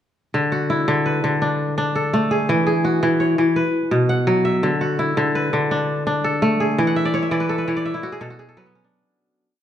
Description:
west african traditional, West African string and xylophone music; 112 BPM (dotted quarters); 12/8; straight; D lydian; A4 = 441 Hz
kora; solo; 0.3-9.6 s; B2 to F#5; -18 LUFS; equal
moderate recital hall reverb, RT60 1.7 s; dark, warm production; -17 LUFS; side -10 dB against mid
0.3-8.9 A section
fade-out 6.8-8.9; kora fill 6.9-8.9
0.3 D; 2.5 E; 3.6 B5; 4.6 D; 6.8 E; 7.9 B5

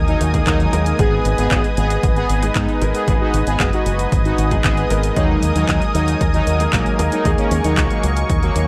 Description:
italo disco; 115 BPM; 4/4; straight; G# minor; A4 = 440 Hz
lush unison pad; sustained chords; 0.0-8.7 s; A#4 to D#6; -26 LUFS; equal; chorus
warm concert grand piano; stabs; 0.0-8.7 s; G#3 to A#4; -27 LUFS; equal
fingered electric bass with an envelope filter; bass; 0.0-8.7 s; F#1 to G#2; -22 LUFS; equal
analog synth brass; melody; 0.1-8.7 s; F#3 to G#4; -25 LUFS; equal; chorus, vintage 12-bit sampler grit
house drum kit; drums; 0.1-8.7 s; handclaps, hi-hat; -28 LUFS; equal
electronic kick drum; drums; 0.3-8.4 s; -23 LUFS; equal
digital ambience; dry, gritty hardware recording, vinyl crackle; -17 LUFS; mono
0.0-8.7 A section
0.0 D#sus4; 1.0 G#m; 5.2 D#sus4

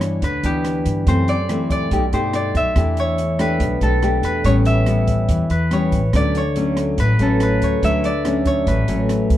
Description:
bossa nova; 142 BPM; 4/4; straight; D major; A4 = 439 Hz
concert harp; melody; 0.0-9.4 s; G4 to E5; -22 LUFS; equal
nylon-string guitar; accompaniment; 0.0-9.4 s; F#2 to G4; -20 LUFS; left 2 dB
upright bass; bass; 0.0-9.4 s; A1 to G2; -21 LUFS; equal
open jazz drum kit; drums; 0.0-9.4 s; hi-hat, kick drum, rim click; -25 LUFS; right 1 dB
light reverb; dark, warm production; -16 LUFS; side -13 dB against mid
0.0-9.4 A section
0.0 G6; 1.1 F#m7b5; 1.9 Baug7; 2.8 Em7; 4.4 A9; 6.1 Dmaj7

